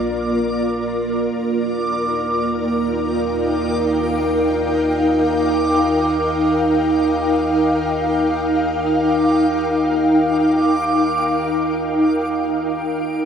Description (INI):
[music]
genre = ambient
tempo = free time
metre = none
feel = none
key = unclear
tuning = A4 = 444 Hz
[part]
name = ethereal airy pad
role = sustained chords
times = 0.0-13.3 s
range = Bb3 to G5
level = -16 LUFS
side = equal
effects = ensemble chorus, built-in reverb, tremolo
[part]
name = round analog bass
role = bass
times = 0.0-13.3 s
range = Bb1 to Eb2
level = -35 LUFS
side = left 1 dB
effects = none
[part]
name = backwards swelling texture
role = texture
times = 0.0-13.3 s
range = D6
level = -27 LUFS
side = right 2 dB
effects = built-in reverb, analog chorus
[sound]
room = wet cathedral reverb, RT60 7.5 s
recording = dreamy mix soaked in reverb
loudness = -16 LUFS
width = side -7 dB against mid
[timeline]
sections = 0.0-13.3 A section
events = fade-in on synth texture 0.0-13.3; fade-out on analog synth bass 0.0-13.3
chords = 0.0 Bb; 1.3 Eb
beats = free time